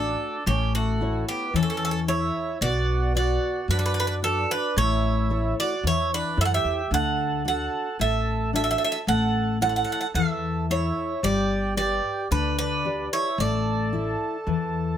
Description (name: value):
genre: greek folk, Greek bouzouki band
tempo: 112 BPM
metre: 4/4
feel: straight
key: unclear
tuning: A4 = 440 Hz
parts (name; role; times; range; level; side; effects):
- Greek bouzouki; melody; 0.0-15.0 s; F#4 to F#5; -26 LUFS; right 3 dB; none
- mellow accordion; second line; 0.0-15.0 s; A3 to A4; -31 LUFS; right 3 dB; none
- fingerpicked steel-string acoustic guitar; accompaniment; 0.0-15.0 s; D3 to E5; -29 LUFS; left 6 dB; none
- upright bass; bass; 0.0-15.0 s; G1 to F#2; -27 LUFS; equal; none
room: light reverb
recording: close, detailed microphones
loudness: -22 LUFS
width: side -10 dB against mid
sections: 0.0-15.0 A section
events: none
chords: 0.5 A; 2.6 Bm; 4.8 A; 6.9 D; 9.1 A; 11.2 G; 13.4 A5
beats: | 0.47 1.00 1.54 2.08 | 2.62 3.15 3.69 4.22 | 4.76 5.30 5.84 6.37 | 6.91 7.45 7.99 8.53 | 9.06 9.60 10.14 10.68 | 11.22 11.76 12.30 12.84 | 13.38 13.92 14.46